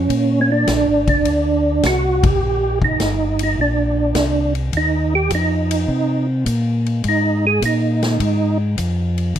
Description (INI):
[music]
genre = soul jazz organ trio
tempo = 104 BPM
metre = 4/4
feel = swing 69% on 8ths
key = Eb major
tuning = A4 = 440 Hz
[part]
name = percussive tonewheel organ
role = melody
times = 0.0-8.6 s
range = Db4 to Ab4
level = -18 LUFS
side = right 3 dB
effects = slow rotary speaker, chorus vibrato, plate reverb
[part]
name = tonewheel organ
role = bass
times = 0.0-9.4 s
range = F1 to C3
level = -19 LUFS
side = left 1 dB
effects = slow rotary speaker
[part]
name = swinging big-band drum kit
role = drums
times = 0.1-9.4 s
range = hi-hat, kick drum, ride cymbal, snare drum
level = -24 LUFS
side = left 2 dB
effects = none
[sound]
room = light reverb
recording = dark, warm production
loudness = -15 LUFS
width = side -10 dB against mid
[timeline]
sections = 0.0-4.7 A section; 4.7-9.4 B section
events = band accent 2.1; tonewheel organ solo 4.7-9.4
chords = 0.1 Bb9; 2.4 Eb; 3.6 Bbadd9; 4.7 Ebsus2; 7.0 Absus2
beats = | 0.10 0.68 1.26 1.84 | 2.42 3.00 3.58 4.16 | 4.74 5.31 5.89 6.47 | 7.05 7.63 8.21 8.78 | 9.36